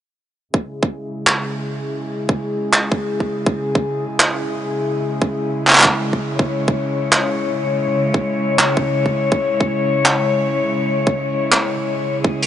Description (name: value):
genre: half-time drum and bass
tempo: 164 BPM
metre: 4/4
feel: swing 57% on 16ths, half-time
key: C# minor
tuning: A4 = 440 Hz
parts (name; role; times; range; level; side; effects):
- rich studio cello section; sustained chords; 0.5-12.5 s; C#3 to C#5; -20 LUFS; left 2 dB; sidechain pumping, low-pass filter
- electronic kick drum; drums; 0.5-12.3 s; none; -18 LUFS; right 1 dB; high-pass filter on kick, high-pass filter on room
- crunchy breakbeat drum kit; drums; 1.3-12.5 s; handclaps, hi-hat; -16 LUFS; right 1 dB; none
room: light reverb, small room ambience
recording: nothing above 10.8 kHz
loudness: -16 LUFS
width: side -10 dB against mid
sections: 0.5-12.5 A section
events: filter sweep on cello section 0.5-12.5; kick drops out 11.5-12.2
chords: 0.5 C#m